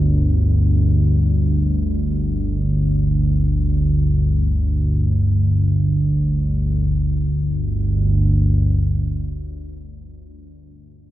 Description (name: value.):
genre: ambient.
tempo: free time.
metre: none.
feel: none.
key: unclear.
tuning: A4 = 440 Hz.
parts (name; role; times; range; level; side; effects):
analog drone; solo; 0.0-10.0 s; G1 to D2; -16 LUFS; equal; chorus.
room: light reverb.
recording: dark, warm production.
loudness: -16 LUFS.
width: side -14 dB against mid.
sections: 0.0-6.9 A section; 6.9-11.1 B section.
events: none.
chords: 0.0 G5.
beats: free time.